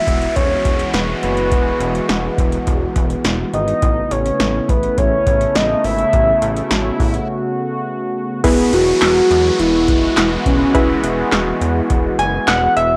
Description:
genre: synth-pop.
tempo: 104 BPM.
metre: 4/4.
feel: straight.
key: E major.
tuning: A4 = 438 Hz.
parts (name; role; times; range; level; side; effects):
soft octave-layered synth lead; melody; 0.0-11.0 s; B3 to E5; -19 LUFS; equal; chorus.
sweeping resonant pad; sustained chords; 0.0-13.0 s; C#3 to F#4; -24 LUFS; equal; chorus.
downlifter and swell; sound effects; 0.0-13.0 s; none; -30 LUFS; equal; none.
chorused synth bass; bass; 0.1-13.0 s; E1 to E2; -25 LUFS; equal; none.
electro analog drum machine; drums; 0.1-12.9 s; crash cymbal, handclaps, hi-hat, kick drum, snare drum; -21 LUFS; equal; overdrive.
warm analog keys; accompaniment; 8.4-13.0 s; E4 to G#5; -21 LUFS; equal; chorus.
room: light reverb, digital ambience.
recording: dry, gritty hardware recording, cassette tape.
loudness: -16 LUFS.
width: mono.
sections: 0.0-8.4 A section; 8.4-13.0 B section.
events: break 7.3-8.4; synth keys fill 11.9-13.0.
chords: 0.0 Eadd9; 3.8 Aadd9; 8.4 Eadd9.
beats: 0.36 0.94 | 1.52 2.09 2.67 3.25 | 3.83 4.40 4.98 5.55 | 6.13 6.71 7.29 7.86 | 8.44 9.02 9.59 10.17 | 10.75 11.32 11.90 12.48.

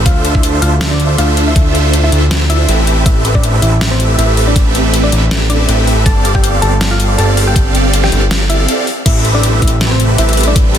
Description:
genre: future bass.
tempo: 160 BPM.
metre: 4/4.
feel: swing 55% on 16ths, half-time.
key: A minor.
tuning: A4 = 438 Hz.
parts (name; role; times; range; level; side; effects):
supersaw chords; riff; 0.0-10.8 s; C4 to F5; -15 LUFS; right 2 dB; phaser, sidechain pumping.
fat analog bass; bass; 0.0-10.8 s; G1 to D2; -13 LUFS; equal; sidechain pumping.
thumb-piano-like synth pluck; melody; 0.1-10.6 s; C4 to A5; -20 LUFS; left 1 dB; chorus, sidechain pumping, ping-pong delay.
dubstep drum kit; drums; 0.1-10.8 s; crash cymbal, hi-hat, ride cymbal, snare drum; -19 LUFS; left 2 dB; overdrive.
electronic kick drum; drums; 0.1-10.6 s; none; -12 LUFS; equal; overdrive.
airy breathy pad; sustained chords; 9.4-10.8 s; C3 to B4; -24 LUFS; equal; none.
room: little or no reverb.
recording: dense, heavily limited modern master.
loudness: -9 LUFS.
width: side -9 dB against mid.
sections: 0.0-9.1 A section; 9.1-10.8 A section.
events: drop 0.0-9.1, 9.1-10.8; break 8.7-9.1.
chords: 0.1 Dm9; 2.9 Am9; 6.1 G9sus4; 9.1 Am9.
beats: | 0.06 0.43 0.81 1.18 | 1.56 1.93 2.31 2.68 | 3.06 3.43 3.81 4.18 | 4.56 4.93 5.31 5.68 | 6.06 6.43 6.81 7.18 | 7.56 7.93 8.31 8.68 | 9.06 9.43 9.81 10.18 | 10.56.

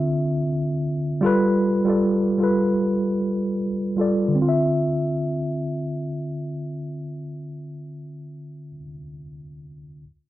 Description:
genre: hip hop.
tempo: 76 BPM.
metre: 4/4.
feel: swing 61% on 16ths.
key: D dorian.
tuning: A4 = 440 Hz.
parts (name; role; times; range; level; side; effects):
mellow tine electric piano; accompaniment; 0.0-10.0 s; D3 to E5; -22 LUFS; equal; medium stereo tremolo, low-pass filter.
room: wet studio reverb, RT60 0.5 s.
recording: dark, warm production.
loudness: -20 LUFS.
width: side -15 dB against mid.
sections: 0.0-4.4 A section; 4.4-7.5 B section.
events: filter sweep on tine electric piano 0.0-4.4.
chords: 0.0 Dm9; 1.2 G9; 4.4 Dm9.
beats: 0.42 | 1.21 2.00 2.79 3.58 | 4.37 5.16 5.95 6.74.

